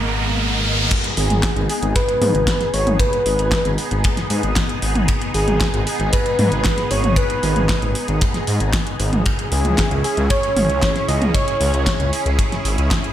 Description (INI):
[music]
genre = synthwave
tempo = 115 BPM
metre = 4/4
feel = straight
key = G# minor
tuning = A4 = 438 Hz
[part]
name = warm velvety synth lead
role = melody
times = 0.0-12.3 s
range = G#4 to D#5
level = -24 LUFS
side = equal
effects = chorus, digital delay, shimmer reverb
[part]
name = lush unison pad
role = sustained chords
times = 0.0-13.1 s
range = G#3 to D#5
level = -25 LUFS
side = right 1 dB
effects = chorus, phaser, sidechain pumping, shimmer reverb
[part]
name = dark detuned saw bass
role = bass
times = 0.0-12.9 s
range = G#1 to G#2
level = -20 LUFS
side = equal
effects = none
[part]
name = riser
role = sound effects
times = 0.0-0.9 s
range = none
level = -22 LUFS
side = right 2 dB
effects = none
[part]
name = kick drum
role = drums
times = 0.9-13.0 s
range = none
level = -20 LUFS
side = equal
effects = studio reverb
[part]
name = pop drum kit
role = drums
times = 0.9-13.1 s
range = crash cymbal, handclaps, hi-hat, snare drum, toms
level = -23 LUFS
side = equal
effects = studio reverb
[part]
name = FM electric piano with soft pad layer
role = second line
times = 1.2-12.3 s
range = G#4 to D#5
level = -28 LUFS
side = equal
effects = none
[sound]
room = light reverb, digital ambience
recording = none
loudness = -16 LUFS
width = side -11 dB against mid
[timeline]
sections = 0.9-13.1 A section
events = riser 0.0-0.9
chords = 0.0 G#madd9; 0.9 G#m; 9.3 C#m